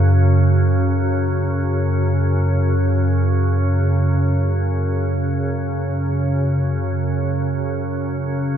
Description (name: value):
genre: world meditative, free-time meditation music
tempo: free time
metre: none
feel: none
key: unclear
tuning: A4 = 440 Hz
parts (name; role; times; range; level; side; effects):
- organ-like drone; drone; 0.0-8.6 s; F#2 to C#3; -16 LUFS; equal; ensemble chorus, built-in reverb
- koto; texture; 0.0-4.2 s; none; barely audible; none; none
room: wet cathedral reverb, RT60 4.4 s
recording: dark, warm production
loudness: -17 LUFS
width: side -8 dB against mid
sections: 0.0-8.6 A section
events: none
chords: none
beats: free time